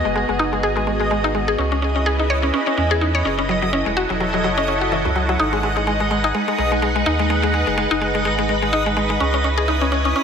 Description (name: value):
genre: IDM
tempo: 126 BPM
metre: 4/4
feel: swing 56% on 16ths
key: G# phrygian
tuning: A4 = 438 Hz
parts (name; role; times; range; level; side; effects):
- soft string machine; sustained chords; 0.0-10.2 s; B3 to G#5; -22 LUFS; right 1 dB; ensemble chorus
- mallet-like synth pluck; arpeggios; 0.0-10.2 s; F#2 to C#5; -21 LUFS; left 2 dB; chorus, phaser, ping-pong delay
- backwards swelling texture; texture; 0.0-10.2 s; D#5; -25 LUFS; equal; built-in reverb
- warm sub bass; bass; 0.1-10.1 s; E1 to E2; -24 LUFS; right 1 dB; tube saturation
room: moderate echo chamber reverb, RT60 2.0 s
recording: none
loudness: -17 LUFS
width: side -7 dB against mid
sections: 0.0-10.2 A section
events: none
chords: 0.0 G#m7; 1.6 C#m7; 3.5 F#m7; 5.4 G#m7; 9.2 C#m7